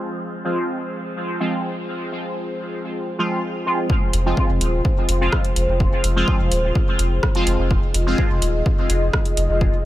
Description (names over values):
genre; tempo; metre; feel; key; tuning
dub techno; 126 BPM; 4/4; straight; F minor; A4 = 440 Hz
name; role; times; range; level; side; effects
dark analog pad; sustained chords; 0.0-9.9 s; F4 to Eb5; -26 LUFS; left 1 dB; chorus, sidechain pumping
resonant sweep polysynth; stabs; 0.4-8.2 s; F3 to F4; -24 LUFS; right 1 dB; chorus, phaser, sidechain pumping, dub echo
electronic kick drum; drums; 3.9-9.7 s; none; -20 LUFS; equal; none
pure sine sub bass; bass; 4.1-9.7 s; Eb1 to F1; -20 LUFS; equal; sidechain pumping
deep house drum kit; drums; 4.1-9.5 s; hi-hat, rim click; -25 LUFS; equal; low-pass filter on hats, low-pass filter on snare
room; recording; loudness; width
little or no reverb; low-pass filter; -18 LUFS; side -14 dB against mid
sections
0.0-3.9 A section; 3.9-9.9 B section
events
filter sweep on analog synth pad 0.0-3.9; filter sweep 0.0-3.9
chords
0.0 Fm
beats
| 0.09 0.56 1.04 1.52 | 1.99 2.47 2.94 3.42 | 3.90 4.37 4.85 5.33 | 5.80 6.28 6.75 7.23 | 7.71 8.18 8.66 9.13 | 9.61